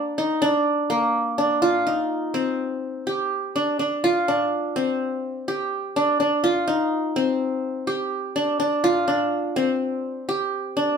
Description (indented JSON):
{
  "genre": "progressive instrumental, progressive",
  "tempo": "249 BPM (eighths)",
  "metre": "5/8",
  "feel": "straight",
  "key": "unclear",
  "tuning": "A4 = 440 Hz",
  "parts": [
    { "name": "qanun", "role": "solo", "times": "0.0-11.0 s", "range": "Bb3 to G4", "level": "-21 LUFS", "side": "equal", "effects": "none" }
  ],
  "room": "wet studio reverb, RT60 0.5 s",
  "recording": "band playing live in one room",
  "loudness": "-21 LUFS",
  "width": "side -6 dB against mid",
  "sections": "0.0-1.6 A section; 1.6-11.0 B section",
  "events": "none",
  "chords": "0.0 Eb5; 1.6 F5; 2.8 Dsus4; 4.0 Dm7; 6.4 F5; 8.8 Dm7"
}